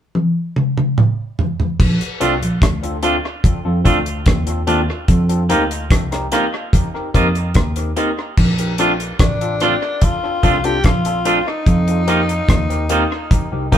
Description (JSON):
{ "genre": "lovers rock reggae", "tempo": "73 BPM", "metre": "4/4", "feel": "straight", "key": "Bb major", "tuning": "A4 = 440 Hz", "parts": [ { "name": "deep reggae drum kit", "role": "drums", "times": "0.1-13.8 s", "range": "crash cymbal, hi-hat, kick drum, rim click, toms", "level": "-17 LUFS", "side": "equal", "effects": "dub echo" }, { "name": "tine electric piano", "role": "bass", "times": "1.8-13.8 s", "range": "A1 to F2", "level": "-20 LUFS", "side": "equal", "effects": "overdrive" }, { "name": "barky tine electric piano", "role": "accompaniment", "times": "2.2-13.8 s", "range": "C4 to Bb4", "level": "-22 LUFS", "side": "left 2 dB", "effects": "overdrive, dub echo" }, { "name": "twangy electric guitar", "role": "stabs", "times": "2.2-13.8 s", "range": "A3 to F4", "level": "-21 LUFS", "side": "right 4 dB", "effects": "spring reverb" }, { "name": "raspy tenor saxophone", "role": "melody", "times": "9.2-13.8 s", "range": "D4 to G4", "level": "-22 LUFS", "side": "left 3 dB", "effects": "none" } ], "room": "moderate studio reverb, RT60 0.5 s", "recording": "band playing live in one room", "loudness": "-14 LUFS", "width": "side -10 dB against mid", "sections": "0.0-1.8 A section; 1.8-8.4 B section; 8.4-13.8 C section", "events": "drum fill 0.2-1.8", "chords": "0.0 N.C.; 1.8 Bbmaj7 (rootless); 5.1 F7sus4; 8.4 Bbmaj7; 11.7 F7sus4" }